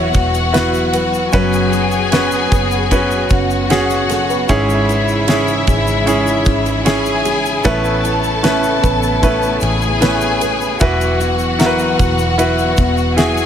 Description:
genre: pop ballad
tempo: 76 BPM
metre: 4/4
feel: straight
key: E major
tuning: A4 = 440 Hz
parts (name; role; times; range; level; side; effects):
- warm studio violin section; second line; 0.0-13.5 s; E4 to A5; -19 LUFS; left 3 dB; ping-pong delay
- clear baby grand piano; accompaniment; 0.0-13.5 s; G#2 to C#5; -18 LUFS; right 1 dB; none
- warm studio string section; sustained chords; 0.0-13.5 s; C#3 to F#4; -23 LUFS; left 2 dB; none
- nylon-string guitar; arpeggios; 0.0-13.5 s; G#2 to B4; -22 LUFS; right 1 dB; ping-pong delay
- vintage muted fingered electric bass; bass; 0.0-13.5 s; E1 to A1; -21 LUFS; equal; none
- damped 70s drum kit; drums; 0.1-13.4 s; kick drum, ride cymbal, snare drum; -19 LUFS; equal; none
- egg shaker; percussion; 0.1-13.5 s; none; -34 LUFS; left 6 dB; none
room: light reverb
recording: none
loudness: -12 LUFS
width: side -9 dB against mid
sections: 0.0-13.5 A section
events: none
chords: 0.0 Esus2; 1.3 F#sus4; 4.5 C#m/G#; 7.7 Aadd9; 10.8 Esus2

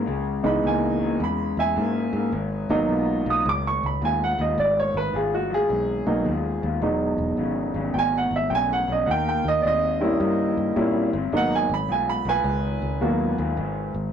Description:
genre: electric blues shuffle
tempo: 107 BPM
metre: 4/4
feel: swing 66% on 8ths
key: G# minor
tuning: A4 = 437 Hz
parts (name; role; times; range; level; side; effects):
- electric guitar through a small old amp; riff; 0.0-14.1 s; E2 to B#3; -28 LUFS; left 4 dB; spring reverb
- fingered electric bass; bass; 0.0-14.1 s; E1 to A#2; -29 LUFS; left 1 dB; none
- warm upright piano; accompaniment; 0.4-13.9 s; E3 to D#6; -23 LUFS; right 2 dB; none
room: moderate studio reverb, RT60 0.5 s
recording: rough rehearsal-room recording, tube saturation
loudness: -21 LUFS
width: side -8 dB against mid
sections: 0.0-14.1 A section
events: none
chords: 0.0 C#m7; 2.3 G#m7; 6.8 Emaj7; 9.1 D#7b9; 11.3 G#m7

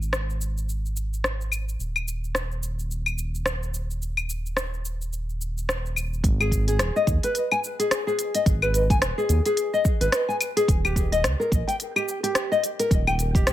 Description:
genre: organic downtempo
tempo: 108 BPM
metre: 4/4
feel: swing 59% on 16ths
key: G# harmonic minor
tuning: A4 = 440 Hz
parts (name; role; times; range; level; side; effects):
- round analog bass; bass; 0.0-13.5 s; D#1 to D#2; -26 LUFS; equal; sidechain pumping
- deep house drum kit; drums; 0.0-13.5 s; claves, hi-hat, rim click, shaker; -27 LUFS; left 1 dB; none
- electronic kick drum; drums; 6.2-13.4 s; none; -23 LUFS; equal; none
- nylon-string guitar; arpeggios; 6.4-13.5 s; G4 to G#5; -24 LUFS; left 2 dB; ping-pong delay
room: little or no reverb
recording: none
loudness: -22 LUFS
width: side -12 dB against mid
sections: 0.0-6.2 A section; 6.2-13.5 B section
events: none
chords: 0.0 N.C.; 6.2 G#5; 10.7 D#7

